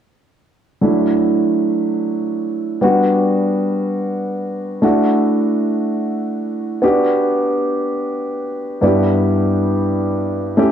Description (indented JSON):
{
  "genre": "pop",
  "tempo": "free time",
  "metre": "none",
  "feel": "none",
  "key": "D major",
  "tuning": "A4 = 439 Hz",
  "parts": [
    { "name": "dark grand piano", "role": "solo", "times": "0.8-10.7 s", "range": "G2 to G4", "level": "-15 LUFS", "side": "equal", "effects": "cassette tape" }
  ],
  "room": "wet spring reverb, RT60 1.8 s, small room ambience",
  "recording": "home recording on cassette",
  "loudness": "-15 LUFS",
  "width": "side -9 dB against mid",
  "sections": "0.8-4.8 A section; 4.8-10.7 B section",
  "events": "none",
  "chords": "0.8 Dadd9; 2.8 Gmaj7; 4.8 Dadd9; 6.8 Gmaj7; 8.8 Em7/G",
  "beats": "free time"
}